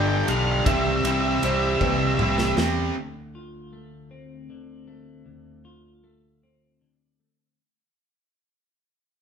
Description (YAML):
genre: post-rock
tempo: 52 BPM (dotted quarters)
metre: 6/8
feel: straight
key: D dorian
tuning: A4 = 444 Hz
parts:
  - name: octave-fuzz lead guitar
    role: melody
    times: 0.0-2.5 s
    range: E5 to G5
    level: -27 LUFS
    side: equal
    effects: distortion
  - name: pedal steel guitar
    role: sustained chords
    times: 0.0-2.9 s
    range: E3 to D5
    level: -37 LUFS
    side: right 1 dB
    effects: none
  - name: felt-muted upright piano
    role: arpeggios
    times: 0.0-2.6 s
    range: B4 to E5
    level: -34 LUFS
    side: right 3 dB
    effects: none
  - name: distorted electric guitar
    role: riff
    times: 0.0-2.9 s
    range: G2 to C4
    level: -26 LUFS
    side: left 3 dB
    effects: overdrive
  - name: distorted electric guitar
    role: riff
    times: 0.0-2.9 s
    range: G2 to C4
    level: -27 LUFS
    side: right 8 dB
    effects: overdrive
  - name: fingered electric bass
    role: bass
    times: 0.0-2.9 s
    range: G1 to E2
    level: -26 LUFS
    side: left 1 dB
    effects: none
  - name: big rock drum kit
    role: drums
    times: 0.3-2.8 s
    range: kick drum, ride cymbal, snare drum, toms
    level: -28 LUFS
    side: right 1 dB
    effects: none
  - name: twelve-string electric guitar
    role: arpeggios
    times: 3.0-7.6 s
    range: D2 to F4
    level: -44 LUFS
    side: left 3 dB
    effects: none
room: moderate large studio reverb, RT60 1.0 s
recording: band playing live in one room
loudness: -20 LUFS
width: side -7 dB against mid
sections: 0.0-3.0 A section; 3.0-7.6 B section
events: drum fill 1.8-3.0; fade-out 3.0-7.6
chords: 0.0 G7; 0.7 Cmaj7; 3.0 Dm7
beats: | 0.66 1.81 | 2.96 4.11 | 5.27 6.43